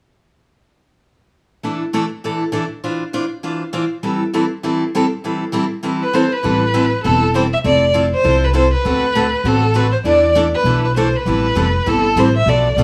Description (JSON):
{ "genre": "acoustic string swing (jazz manouche)", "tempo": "199 BPM", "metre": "4/4", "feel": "swing 59% on 8ths", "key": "A minor", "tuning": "A4 = 440 Hz", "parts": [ { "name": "picked steel-string acoustic guitar", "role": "accompaniment", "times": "1.6-12.8 s", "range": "B2 to C5", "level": "-21 LUFS", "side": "equal", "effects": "none" }, { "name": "warm violin", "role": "melody", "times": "6.0-12.8 s", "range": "A4 to E5", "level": "-18 LUFS", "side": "equal", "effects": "none" }, { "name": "upright bass", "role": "bass", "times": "6.4-12.8 s", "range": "E1 to E2", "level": "-21 LUFS", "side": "equal", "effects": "none" } ], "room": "moderate studio reverb, RT60 0.7 s", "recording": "studio reverb", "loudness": "-17 LUFS", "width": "mono", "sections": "1.6-6.4 A section; 6.4-12.8 B section", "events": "none", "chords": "1.6 E7sus4; 2.8 Dm9/E; 4.0 Am7/E; 7.6 Fmaj7; 8.8 D7; 10.1 E7sus4; 11.3 Am7" }